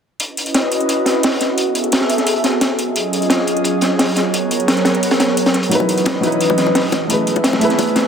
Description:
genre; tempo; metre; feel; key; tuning
liquid drum and bass; 174 BPM; 4/4; straight; C# minor; A4 = 441 Hz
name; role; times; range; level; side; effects
airy breathy pad; sustained chords; 0.4-8.1 s; E3 to E5; -17 LUFS; right 1 dB; chorus
crunchy breakbeat drum kit; drums; 0.2-8.0 s; hi-hat, snare drum; -18 LUFS; equal; high-pass filter on hats, high-pass filter on snare, high-pass filter on room
electronic hi-hat; drums; 0.2-8.0 s; none; -25 LUFS; right 1 dB; none
felt-muted upright piano; accompaniment; 5.7-8.1 s; F#3 to B4; -17 LUFS; equal; tape echo
bongos; percussion; 5.8-8.0 s; none; -24 LUFS; left 6 dB; none
room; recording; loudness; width
moderate concert hall reverb, RT60 2.3 s; none; -14 LUFS; side -7 dB against mid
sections
0.2-8.1 A section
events
filter sweep on analog synth pad 0.2-8.1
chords
0.2 C#m11; 1.6 F#m11; 2.8 D#m11; 4.2 G#m11; 5.7 C#m11; 7.1 F#m11

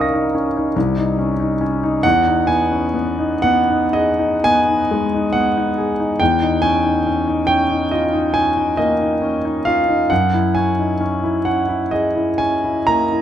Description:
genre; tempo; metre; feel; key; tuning
classical, impressionist solo piano; 38-47 BPM (dotted quarters); 9/8; rubato; unclear; A4 = 440 Hz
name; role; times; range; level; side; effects
clear concert grand piano; solo; 0.0-13.2 s; C2 to Bb6; -15 LUFS; equal; none
room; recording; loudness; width
moderate recital hall reverb, RT60 1.4 s; close, detailed microphones; -15 LUFS; side -10 dB against mid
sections
0.0-13.2 A section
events
none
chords
0.0 Eb9sus4/C; 0.8 Dbsus2/C; 2.0 Emaj7; 6.2 Ebsus2/Fb; 10.1 Gb9

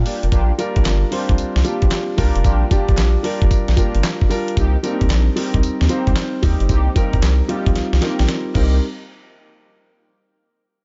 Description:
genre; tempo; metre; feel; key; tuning
R&B, new jack swing; 113 BPM; 4/4; swing 66% on 16ths; unclear; A4 = 440 Hz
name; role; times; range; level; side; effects
dark grand piano; accompaniment; 0.0-8.8 s; G3 to Bb5; -25 LUFS; equal; none
round analog bass; bass; 0.0-8.8 s; F1 to Eb2; -19 LUFS; equal; none
mellow synth brass; stabs; 0.1-8.8 s; Bb3 to G4; -31 LUFS; equal; chorus, phaser, digital delay
dusty soul sampler-style drum kit; drums; 0.1-8.7 s; crash cymbal, handclaps, hi-hat, kick drum, snare drum, tambourine; -21 LUFS; equal; none
group handclap; percussion; 0.8-8.8 s; none; barely audible; none; none
room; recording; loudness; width
digital ambience; nothing above 7.6 kHz; -18 LUFS; mono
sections
0.3-8.8 A section; 8.8-10.8 B section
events
drum fill 7.8-8.8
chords
0.3 Bb6; 4.6 Cm7; 8.8 N.C.

